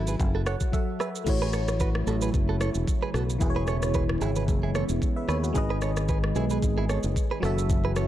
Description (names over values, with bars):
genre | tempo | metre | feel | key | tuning
afrobeats | 112 BPM | 4/4 | swing 55% on 16ths | unclear | A4 = 439 Hz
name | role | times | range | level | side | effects
breathy tenor saxophone | melody | 0.0-0.7 s | E4 | -41 LUFS | equal | ping-pong delay
FM electric piano | accompaniment | 0.0-8.1 s | E3 to F#5 | -32 LUFS | left 1 dB | chorus, phaser
fingered electric bass | bass | 0.0-8.1 s | E1 to D#2 | -27 LUFS | equal | none
direct-recorded clean electric guitar | riff | 0.1-8.1 s | E4 to C#5 | -34 LUFS | right 6 dB | spring reverb, ping-pong delay
afro-pop drum kit | drums | 0.1-8.1 s | crash cymbal, kick drum, rim click, shaker | -28 LUFS | equal | none
warm analog pad | sustained chords | 1.3-8.1 s | C#3 to G#4 | -34 LUFS | right 1 dB | chorus
room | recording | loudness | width
little or no reverb | dark, warm production | -24 LUFS | side -12 dB against mid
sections
0.0-1.3 A section; 1.3-8.1 B section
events
FM electric piano fill 0.2-1.3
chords
0.0 F#m7; 1.3 A6; 3.4 E6; 5.6 G#m; 7.4 F#m7